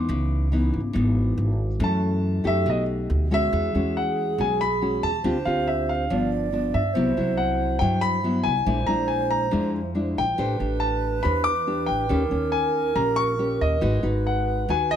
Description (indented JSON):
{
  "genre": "bossa nova",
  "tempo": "140 BPM",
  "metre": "4/4",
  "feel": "straight",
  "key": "C# minor",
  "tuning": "A4 = 440 Hz",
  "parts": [
    { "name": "warm grand piano", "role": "melody", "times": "0.0-15.0 s", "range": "D#5 to D6", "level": "-26 LUFS", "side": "left 2 dB", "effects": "none" },
    { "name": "nylon-string guitar", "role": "accompaniment", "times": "0.0-15.0 s", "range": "F#2 to C5", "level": "-26 LUFS", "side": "left 2 dB", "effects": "none" },
    { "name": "upright bass", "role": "bass", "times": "0.0-15.0 s", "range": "G1 to G2", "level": "-26 LUFS", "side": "equal", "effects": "none" },
    { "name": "mellow alto flute", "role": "second line", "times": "3.5-15.0 s", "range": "G#4 to D5", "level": "-29 LUFS", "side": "right 7 dB", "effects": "none" }
  ],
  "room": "light reverb",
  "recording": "close, detailed microphones",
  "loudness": "-21 LUFS",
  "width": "side -9 dB against mid",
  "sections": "0.0-3.5 A section; 3.5-15.0 B section",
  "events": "grand piano solo 0.0-3.5",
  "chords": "0.1 C#m9; 1.8 F#m7; 2.7 B7alt; 3.5 E69; 5.2 Dm7; 6.1 G7; 7.0 Cmaj7#11; 8.7 A#7#11; 10.4 Am11; 12.1 D#7; 13.8 G#m7"
}